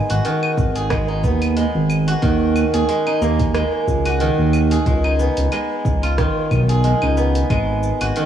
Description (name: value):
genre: organic downtempo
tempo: 91 BPM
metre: 4/4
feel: swing 55% on 16ths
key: G# dorian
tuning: A4 = 440 Hz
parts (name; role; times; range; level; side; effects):
- steel-string zither; arpeggios; 0.0-8.3 s; D#3 to G#4; -20 LUFS; equal; tape echo
- smooth synth bass; bass; 0.1-8.1 s; G#1 to D#2; -18 LUFS; right 1 dB; none
- deep house drum kit; drums; 0.1-8.3 s; cabasa, claves, hi-hat, rim click; -28 LUFS; right 1 dB; overdrive
- electronic kick drum; drums; 0.6-7.6 s; none; -22 LUFS; equal; overdrive
room: moderate lush hall reverb, RT60 2.6 s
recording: worn, warbling old tape, cassette tape, warbly pitch drift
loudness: -16 LUFS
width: side -9 dB against mid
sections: 0.0-8.3 A section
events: none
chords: 0.0 G#m7; 2.2 D#m; 4.9 C#add9; 7.5 G#m7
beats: 0.25 0.91 1.56 | 2.23 2.88 3.54 4.20 | 4.86 5.52 6.18 6.84 | 7.50 8.16